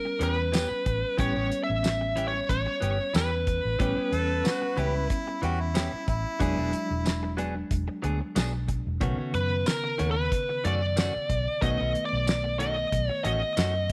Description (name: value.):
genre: straight-eighth soul blues.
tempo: 92 BPM.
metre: 4/4.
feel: swing 55% on 16ths.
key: unclear.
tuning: A4 = 439 Hz.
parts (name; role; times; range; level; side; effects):
biting lead guitar; melody; 0.0-5.1, 9.3-13.9 s; A#4 to E5; -31 LUFS; equal; overdrive.
mellow reed electric piano; accompaniment; 0.0-13.9 s; C#3 to D4; -37 LUFS; equal; fast tremolo.
direct-recorded clean electric guitar; stabs; 0.1-13.9 s; D#3 to G#4; -39 LUFS; equal; subtle chorus.
vintage muted fingered electric bass; bass; 0.2-13.9 s; E1 to F#2; -32 LUFS; equal; none.
cloth-damped thuddy drum kit; drums; 0.2-13.9 s; hi-hat, kick drum, snare drum, tambourine; -31 LUFS; equal; none.
clear harmonica; second line; 4.1-7.3 s; E4 to A4; -35 LUFS; equal; overdrive.
room: light reverb, small room ambience.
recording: none.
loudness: -27 LUFS.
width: mono.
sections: 0.0-13.9 A section.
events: none.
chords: 0.0 A9; 6.4 E9; 9.0 B9.